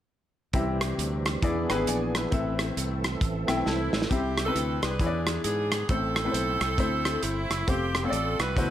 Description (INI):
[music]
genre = uptempo gospel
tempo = 134 BPM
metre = 4/4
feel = swing 60% on 8ths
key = C major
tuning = A4 = 441 Hz
[part]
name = clear baby grand piano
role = accompaniment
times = 0.5-8.7 s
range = A2 to A5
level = -30 LUFS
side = left 3 dB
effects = none
[part]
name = bright tonewheel organ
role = sustained chords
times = 0.5-4.1 s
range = E3 to A4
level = -33 LUFS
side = right 2 dB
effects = slow rotary speaker, chorus vibrato
[part]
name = fingered electric bass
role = bass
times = 0.5-8.7 s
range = F1 to G#2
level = -32 LUFS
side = equal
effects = none
[part]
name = warm soul drum kit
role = drums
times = 0.5-8.7 s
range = hi-hat, kick drum, rim click, snare drum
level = -29 LUFS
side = right 1 dB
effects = none
[part]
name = bright saxophone section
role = melody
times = 3.7-8.7 s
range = A3 to B4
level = -30 LUFS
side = right 2 dB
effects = none
[sound]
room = light reverb, studio ambience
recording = none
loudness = -24 LUFS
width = side -11 dB against mid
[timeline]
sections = 0.5-4.1 A section; 4.1-8.7 B section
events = grand piano fill 3.2-4.1; drum fill 3.7-4.1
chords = 0.5 C; 1.4 E7; 2.3 Am; 4.1 C; 5.0 E7; 5.9 Am; 7.7 F